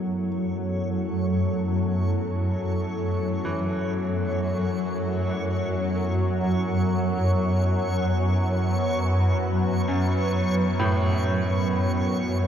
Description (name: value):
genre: dark ambient drone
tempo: free time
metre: none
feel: none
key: F# minor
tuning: A4 = 440 Hz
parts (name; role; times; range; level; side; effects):
- deep dark ambient pad; sustained chords; 0.0-12.5 s; F#3 to B4; -33 LUFS; equal; chorus, built-in reverb
- bright grand piano; arpeggios; 0.0-12.5 s; F#2 to E3; -31 LUFS; equal; ping-pong delay
- swarming drone; drone; 0.0-12.5 s; F#2 to F#3; -23 LUFS; equal; built-in reverb
- backwards swelling texture; texture; 0.0-12.5 s; C#5; -35 LUFS; left 1 dB; built-in reverb
room: wet cathedral reverb, RT60 5.7 s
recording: in a vast, echoing space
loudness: -22 LUFS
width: side -9 dB against mid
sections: 0.0-12.5 A section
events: fade-in on ambient pad 0.0-12.5; fade-in on synth texture 0.0-12.5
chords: 0.0 F#m